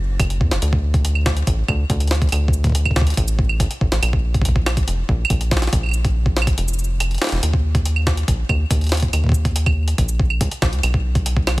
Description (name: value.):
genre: IDM.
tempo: 141 BPM.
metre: 4/4.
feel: straight.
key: unclear.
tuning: A4 = 439 Hz.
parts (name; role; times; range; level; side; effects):
rubbery square bass; bass; 0.0-11.6 s; F1 to Fb2; -19 LUFS; equal; tube saturation.
electronic kick drum; drums; 0.2-11.6 s; none; -20 LUFS; equal; studio reverb.
jungle sampler-style drum kit; drums; 0.2-11.6 s; claves, hi-hat, shaker, snare drum; -24 LUFS; right 1 dB; studio reverb.
room: digital ambience.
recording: none.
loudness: -16 LUFS.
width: side -20 dB against mid.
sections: 0.0-11.6 A section.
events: break 6.6-7.4.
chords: none.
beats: 0.20 | 0.62 1.05 1.47 1.90 | 2.32 2.75 3.17 3.60 | 4.03 4.45 4.88 5.30 | 5.73 6.15 6.58 7.00 | 7.43 7.86 8.28 8.71 | 9.13 9.56 9.98 10.41 | 10.83 11.26.